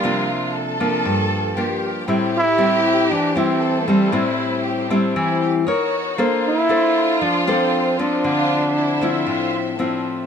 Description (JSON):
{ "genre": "bossa nova", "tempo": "117 BPM", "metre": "4/4", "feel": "straight", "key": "unclear", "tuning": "A4 = 440 Hz", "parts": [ { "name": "warm trombone", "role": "melody", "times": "0.0-9.8 s", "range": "G3 to E4", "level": "-19 LUFS", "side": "right 1 dB", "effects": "none" }, { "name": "warm symphonic violin section", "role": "second line", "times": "0.0-10.3 s", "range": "C4 to A4", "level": "-24 LUFS", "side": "right 1 dB", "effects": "none" }, { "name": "nylon-string guitar", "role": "accompaniment", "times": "0.0-10.3 s", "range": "G2 to C#5", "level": "-20 LUFS", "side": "left 2 dB", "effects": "none" }, { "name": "warm studio string section", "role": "sustained chords", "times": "2.1-10.3 s", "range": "A3 to E5", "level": "-29 LUFS", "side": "left 2 dB", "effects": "none" } ], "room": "light reverb", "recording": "none", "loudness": "-17 LUFS", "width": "side -7 dB against mid", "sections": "0.0-10.3 A section", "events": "none", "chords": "0.0 C9sus4; 2.1 Am7; 5.7 Bmaj9; 6.2 Bbmaj9; 8.2 Dm9" }